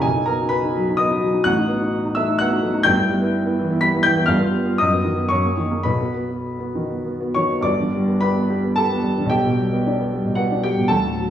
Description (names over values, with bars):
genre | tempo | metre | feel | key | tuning
classical, romantic character piece for solo piano | 98-131 BPM | 3/4 | rubato | B major, G major from 7.6 s | A4 = 439 Hz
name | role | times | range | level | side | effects
warm grand piano | solo | 0.0-11.3 s | G1 to B6 | -17 LUFS | equal | none
room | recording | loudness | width
wet stone room reverb, RT60 1.3 s | small room ambience | -17 LUFS | side -10 dB against mid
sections
0.0-7.6 A section; 7.6-11.3 B section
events
none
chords
0.0 B; 1.4 B7/A; 2.9 Em/G; 4.3 G7; 4.8 B/F#; 5.3 F#69; 5.9 B; 7.6 G; 9.3 G/B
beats
| 0.03 0.52 0.99 | 1.45 1.92 2.39 | 2.85 3.33 3.81 | 4.29 4.79 5.30 | 5.86 6.44 7.05 | 7.64 8.21 8.77 | 9.31 9.86 10.39 | 10.90